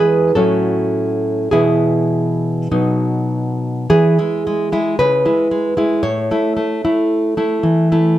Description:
romantic piece for solo classical guitar; 49-57 BPM; 2/4; rubato; E major; A4 = 440 Hz
nylon-string guitar; solo; 0.0-8.2 s; A2 to C#5; -14 LUFS; equal
moderate studio reverb, RT60 0.6 s; -14 LUFS; side -13 dB against mid
0.0-3.9 A section; 3.9-8.2 B section
0.3 F#m/A; 1.5 E/B; 2.7 B; 3.9 E; 5.0 C#m; 6.0 A
0.34 | 1.51 2.71 | 3.89 4.99 | 6.04 7.10

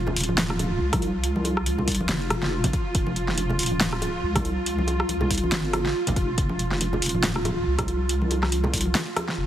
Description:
deep dubstep; 140 BPM; 4/4; swing 57% on 16ths, half-time; A4 = 442 Hz
granular cloud pad; sustained chords; 0.0-9.5 s; F4; -29 LUFS; right 2 dB; built-in reverb
deep soft wobble bass; bass; 0.0-9.5 s; Eb1 to C2; -26 LUFS; equal; chorus
bongos and congas; percussion; 0.1-9.3 s; -31 LUFS; equal; dub echo
deep house drum kit; drums; 0.2-9.4 s; hi-hat, rim click, snare drum; -27 LUFS; equal
electronic kick drum; drums; 0.9-8.8 s; -27 LUFS; equal
light reverb; heavily compressed radio sound; -22 LUFS; side -11 dB against mid
0.0-9.5 A section
0.0 F5
0.38 0.81 | 1.24 1.66 2.09 2.52 | 2.95 3.38 3.81 4.24 | 4.66 5.09 5.52 5.95 | 6.38 6.81 7.24 7.66 | 8.09 8.52 8.95 9.38

